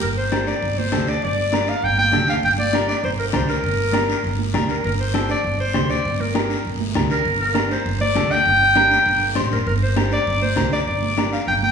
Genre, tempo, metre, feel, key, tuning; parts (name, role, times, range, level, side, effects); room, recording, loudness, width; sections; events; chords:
latin, cumbia; 199 BPM; 4/4; straight; G minor; A4 = 440 Hz
breathy clarinet; melody; 0.0-11.7 s; Bb4 to G5; -20 LUFS; equal
upright bass; bass; 0.0-11.7 s; G1 to D2; -24 LUFS; right 1 dB
congas; percussion; 0.0-11.7 s; -28 LUFS; right 4 dB
guiro; percussion; 0.0-11.7 s; -31 LUFS; left 4 dB
clean electric guitar; accompaniment; 0.3-11.4 s; D4 to C5; -25 LUFS; left 2 dB
wet recital hall reverb, RT60 1.4 s; recorded in a church or concert hall, studio reverb; -17 LUFS; side -6 dB against mid
0.0-11.7 A section
0.0 Gm